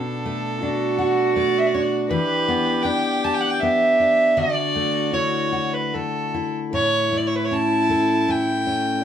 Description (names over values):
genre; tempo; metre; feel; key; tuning
celtic folk, Celtic slow air; 74-82 BPM; 3/4; rubato; E dorian; A4 = 440 Hz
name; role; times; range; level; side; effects
warm fiddle; melody; 0.0-9.0 s; A4 to A5; -21 LUFS; right 2 dB; none
warm cello; second line; 0.0-9.0 s; D4 to G4; -24 LUFS; right 3 dB; none
fingerpicked steel-string acoustic guitar; accompaniment; 0.0-9.0 s; A2 to A4; -24 LUFS; left 4 dB; none
room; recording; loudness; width
moderate small room reverb, RT60 0.5 s; band playing live in one room; -18 LUFS; side -9 dB against mid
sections
0.0-9.0 A section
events
none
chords
0.0 Bm7; 2.1 Em7; 4.4 Dadd9; 6.7 A7